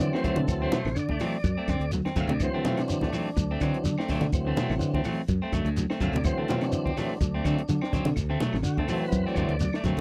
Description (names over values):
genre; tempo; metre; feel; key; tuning
afrobeat; 125 BPM; 4/4; swing 54% on 16ths; D mixolydian; A4 = 442 Hz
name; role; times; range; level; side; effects
tonewheel organ; accompaniment; 0.0-9.8 s; E3 to F5; -34 LUFS; equal; overdrive, fast rotary speaker
semi-hollow electric guitar; arpeggios; 0.0-10.0 s; B2 to F#3; -35 LUFS; equal; none
modern bright fingered electric bass; bass; 0.0-10.0 s; A1 to D3; -31 LUFS; equal; none
compact cocktail drum kit; drums; 0.0-10.0 s; hi-hat, kick drum, snare drum; -35 LUFS; equal; none
shekere; percussion; 0.0-10.0 s; none; -36 LUFS; equal; none
electric guitar at the edge of break-up; stabs; 0.1-10.0 s; F#3 to C4; -34 LUFS; equal; none
claves; percussion; 0.1-9.8 s; none; -49 LUFS; equal; none
congas; percussion; 0.2-10.0 s; none; -37 LUFS; equal; none
room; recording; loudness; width
light reverb; dry, close 1970s-style studio recording; -27 LUFS; mono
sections
0.0-10.0 A section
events
tonewheel organ solo 0.0-10.0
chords
0.0 D7